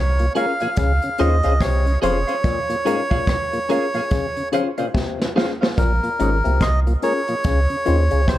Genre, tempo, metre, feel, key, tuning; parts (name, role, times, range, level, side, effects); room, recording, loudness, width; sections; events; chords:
dub reggae; 72 BPM; 4/4; swing 60% on 16ths; Bb minor; A4 = 440 Hz
melodica; melody; 0.0-8.4 s; Bb4 to F5; -23 LUFS; right 2 dB; dub echo
auto-wah clav; riff; 0.0-8.4 s; F2 to Eb3; -28 LUFS; left 7 dB; dub echo
warm sub bass; bass; 0.0-8.4 s; F1 to Eb2; -18 LUFS; equal
tonewheel organ; accompaniment; 0.2-8.2 s; Bb2 to Db4; -28 LUFS; left 1 dB; stopped rotary speaker
vintage brush drum kit; drums; 0.2-8.4 s; hi-hat, kick drum, rim click, snare drum; -23 LUFS; equal
reed electric piano; stabs; 0.3-8.0 s; Db4 to C5; -27 LUFS; left 5 dB; dub echo
clean electric guitar; accompaniment; 0.4-5.7 s; Ab4 to F5; -29 LUFS; right 3 dB; wide subtle chorus, dub echo
light reverb, small room ambience; -17 LUFS; side -14 dB against mid
0.0-8.4 A section
break 2.4-5.8; drum fill 4.9-5.8
0.0 Bbm7; 0.8 Dbmaj7; 2.4 Bbm7; 4.1 Dbmaj7; 5.8 Bbm7; 7.4 Dbmaj7